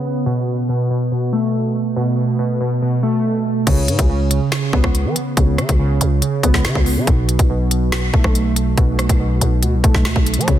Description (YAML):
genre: hip hop, drill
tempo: 141 BPM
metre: 4/4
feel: half-time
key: unclear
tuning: A4 = 440 Hz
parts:
  - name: warbly lo-fi synth keys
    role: arpeggios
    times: 0.0-10.6 s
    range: B2 to B3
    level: -18 LUFS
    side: right 1 dB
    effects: chorus, low-pass filter, digital delay
  - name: growling 808-style bass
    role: bass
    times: 3.7-10.6 s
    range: B1 to F#3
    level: -18 LUFS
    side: equal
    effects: none
  - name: drill drum kit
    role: drums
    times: 3.7-10.6 s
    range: crash cymbal, finger snaps, hi-hat, kick drum, rim click, snare drum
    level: -17 LUFS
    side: equal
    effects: soft clipping on snare
room: light reverb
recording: dense, heavily limited modern master, low-pass filter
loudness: -15 LUFS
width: side -11 dB against mid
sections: 0.0-3.7 A section; 3.7-10.6 B section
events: filter sweep 0.0-3.7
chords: 0.3 Asus2/B; 3.7 C#7(no3); 7.1 B7(no3)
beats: | 0.27 0.69 1.12 1.54 | 1.97 2.39 2.82 3.24 | 3.67 4.09 4.52 4.95 | 5.37 5.80 6.22 6.65 | 7.07 7.50 7.92 8.35 | 8.78 9.20 9.63 10.05 | 10.48